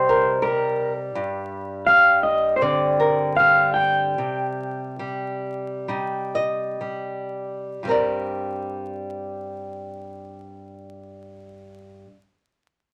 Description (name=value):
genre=folk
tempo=56-84 BPM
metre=4/4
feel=straight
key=G minor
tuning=A4 = 440 Hz
part: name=electric guitar through a small old amp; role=melody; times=0.0-6.7 s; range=Bb4 to G5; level=-20 LUFS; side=equal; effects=harmonic tremolo
part: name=nylon-string guitar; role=accompaniment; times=0.0-12.1 s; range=G2 to Eb5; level=-28 LUFS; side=equal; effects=none
room=moderate studio reverb, RT60 0.6 s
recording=vinyl crackle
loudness=-22 LUFS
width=mono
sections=0.0-7.8 A section; 7.8-12.1 B section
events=slowing down 1.1-7.8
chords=0.0 Cm7; 1.1 Gm; 4.1 Cm; 7.8 Gm